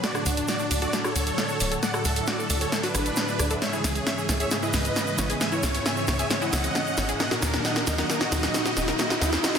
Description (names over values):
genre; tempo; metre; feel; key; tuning
uplifting trance; 134 BPM; 4/4; straight; unclear; A4 = 440 Hz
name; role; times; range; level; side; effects
supersaw chords; melody; 0.0-9.6 s; D4 to G#5; -28 LUFS; right 1 dB; dub echo
analog string pad; sustained chords; 0.0-9.6 s; G#2 to F#4; -32 LUFS; equal; ensemble chorus
wide unison pluck; arpeggios; 0.0-9.5 s; G#3 to F#5; -34 LUFS; left 2 dB; ping-pong delay
techno drum kit; drums; 0.0-9.6 s; hi-hat, rim click, snare drum; -27 LUFS; equal; none
egg shaker; percussion; 0.0-9.6 s; none; -36 LUFS; right 3 dB; none
riser; sound effects; 0.7-9.6 s; none; -35 LUFS; equal; none
tight sequencer bass; bass; 0.3-9.4 s; D1 to D#2; -29 LUFS; equal; none
room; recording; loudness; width
moderate lush hall reverb, RT60 1.8 s; dense, heavily limited modern master; -22 LUFS; side -7 dB against mid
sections
0.0-9.6 A section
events
build-up 0.0-9.6; drum fill 0.0-9.6; riser 0.7-9.6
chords
0.0 D; 3.6 C#m; 7.2 D#m